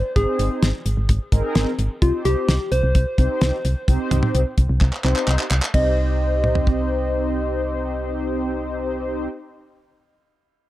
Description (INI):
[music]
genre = synth-pop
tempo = 129 BPM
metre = 4/4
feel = straight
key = C minor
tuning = A4 = 435 Hz
[part]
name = soft struck synth lead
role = melody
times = 0.0-9.3 s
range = F4 to Eb5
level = -26 LUFS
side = equal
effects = chorus, dub echo
[part]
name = solid FM bass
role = bass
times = 0.0-9.3 s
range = Ab1 to C2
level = -21 LUFS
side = equal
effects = none
[part]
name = mellow synth brass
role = accompaniment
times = 0.2-9.3 s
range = C4 to C5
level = -25 LUFS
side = equal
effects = chorus
[part]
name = damped 70s drum kit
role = drums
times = 0.2-6.8 s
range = handclaps, hi-hat, kick drum, ride cymbal, snare drum, toms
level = -21 LUFS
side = equal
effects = none
[sound]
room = light reverb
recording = echo-heavy mix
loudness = -18 LUFS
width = side -15 dB against mid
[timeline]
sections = 0.0-5.7 A section; 5.7-9.5 B section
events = drum fill 4.8-5.7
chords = 0.0 Ab; 2.0 Cm